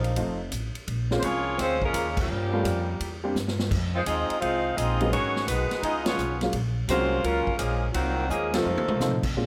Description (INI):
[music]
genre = jazz, big band swing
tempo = 170 BPM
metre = 4/4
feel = swing 65% on 8ths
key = unclear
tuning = A4 = 442 Hz
[part]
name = clear saxophone section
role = melody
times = 0.0-9.3 s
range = Eb3 to F5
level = -30 LUFS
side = equal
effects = none
[part]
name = clear trombone section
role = second line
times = 0.0-9.2 s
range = Gb2 to F4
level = -34 LUFS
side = equal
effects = none
[part]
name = upright bass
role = bass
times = 0.0-9.5 s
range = F1 to C3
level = -32 LUFS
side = equal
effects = none
[part]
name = swinging big-band drum kit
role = drums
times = 0.0-9.5 s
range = crash cymbal, hi-hat, kick drum, ride cymbal, snare drum, toms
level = -35 LUFS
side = equal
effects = none
[part]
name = warm upright piano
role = accompaniment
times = 0.2-9.5 s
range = F3 to F5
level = -32 LUFS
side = equal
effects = none
[part]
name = bright trombone section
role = sustained chords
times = 9.4-9.5 s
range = Bb2 to Bb3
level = -35 LUFS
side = equal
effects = none
[sound]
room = light reverb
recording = none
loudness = -26 LUFS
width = mono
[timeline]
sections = 0.0-9.4 A section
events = band accent 2.1, 6.0, 8.5; drum fill 3.4-3.7, 8.3-9.0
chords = 0.2 F7; 0.9 Bbm7; 2.3 Gm7b5; 3.0 C7; 3.7 Fm7; 5.1 Abm7; 5.8 Db7; 6.5 Gbmaj7; 8.0 Cm7b5